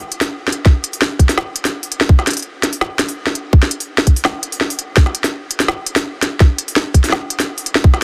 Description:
drum and bass; 167 BPM; 4/4; half-time
organic electronic drum kit; drums; 0.0-8.0 s; hi-hat, snare drum; -19 LUFS; equal; soft clipping on snare
electronic kick drum; drums; 0.7-7.9 s; -11 LUFS; equal
little or no reverb; dense, heavily limited modern master; -16 LUFS; mono
0.0-8.0 A section

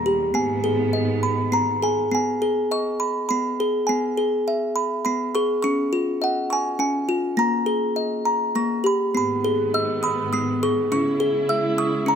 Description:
children's music, lullaby; 102 BPM; 3/4; straight; G# minor; A4 = 445 Hz
music box; melody; 0.0-12.2 s; A#3 to E6; -20 LUFS; equal
warm studio string section; sustained chords; 0.0-2.1, 9.1-12.2 s; D#2 to E4; -27 LUFS; right 2 dB
moderate concert hall reverb, RT60 2.0 s; close, detailed microphones; -20 LUFS; side -7 dB against mid
0.0-2.1 A section; 2.1-12.2 A section
0.3 G#m; 3.9 E; 5.6 C#add9; 7.4 D#sus4; 8.5 A#m6; 9.1 G#m; 10.9 C#m

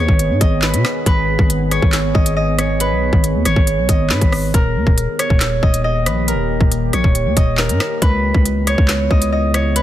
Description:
hip hop, drill; 138 BPM; 4/4; half-time; G# harmonic minor; A4 = 442 Hz
Celtic harp; melody; 0.0-9.8 s; A#4 to D#5; -20 LUFS; right 1 dB; tape echo
deep dark ambient pad; sustained chords; 0.0-9.8 s; C#3 to G#4; -24 LUFS; equal; chorus, built-in reverb
growling 808-style bass; bass; 0.0-9.8 s; D#1 to B2; -18 LUFS; equal
drill drum kit; drums; 0.1-9.8 s; handclaps, hi-hat, kick drum, rim click, snare drum; -16 LUFS; equal
digital ambience; dense, heavily limited modern master; -13 LUFS; side -12 dB against mid
0.0-9.8 A section
0.0 G#m; 4.5 D#; 8.0 C#m7

